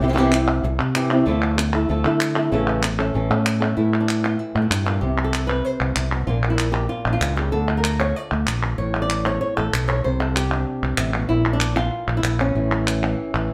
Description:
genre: flamenco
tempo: 191 BPM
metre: 4/4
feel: straight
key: unclear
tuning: A4 = 439 Hz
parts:
  - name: flamenco guitar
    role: melody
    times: 0.0-13.5 s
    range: A2 to D5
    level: -25 LUFS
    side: equal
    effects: none
  - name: modern bright fingered electric bass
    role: bass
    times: 0.0-13.5 s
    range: A1 to D3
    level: -25 LUFS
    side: equal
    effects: none
  - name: palmas hand claps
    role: percussion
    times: 0.2-13.5 s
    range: none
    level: -28 LUFS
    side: equal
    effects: none
room: wet studio reverb, RT60 0.7 s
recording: heard from further back in the room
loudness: -21 LUFS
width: mono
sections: 0.0-3.8 A section; 3.8-13.5 B section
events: none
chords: 0.0 C; 1.3 Dmadd9; 2.5 A; 3.8 A5; 5.0 C5; 6.3 Bb; 7.5 Dm; 8.8 A; 10.0 Csus2; 11.3 Bb5; 12.6 A

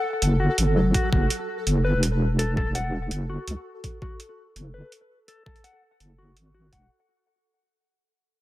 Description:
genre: half-time drum and bass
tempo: 166 BPM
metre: 4/4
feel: half-time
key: F# minor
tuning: A4 = 442 Hz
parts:
  - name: mellow electric guitar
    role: arpeggios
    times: 0.0-6.9 s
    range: F#3 to F#5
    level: -29 LUFS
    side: left 3 dB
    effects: vibrato effect, low-pass filter, tape echo
  - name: pulsing gated texture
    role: texture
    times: 0.0-6.9 s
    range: A4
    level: -33 LUFS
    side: right 3 dB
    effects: chorus, built-in reverb
  - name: deep soft wobble bass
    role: bass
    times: 0.2-6.9 s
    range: E1 to C#2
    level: -23 LUFS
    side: equal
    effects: chorus
  - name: electronic hi-hat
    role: drums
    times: 0.2-6.8 s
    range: none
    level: -29 LUFS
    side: right 2 dB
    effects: overdrive
  - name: electronic kick drum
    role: drums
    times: 0.9-6.8 s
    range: none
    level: -26 LUFS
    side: equal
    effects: overdrive
room: light reverb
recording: echo-heavy mix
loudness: -21 LUFS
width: side -16 dB against mid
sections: 0.0-6.9 A section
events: fade-out 0.0-6.9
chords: 0.0 F#m

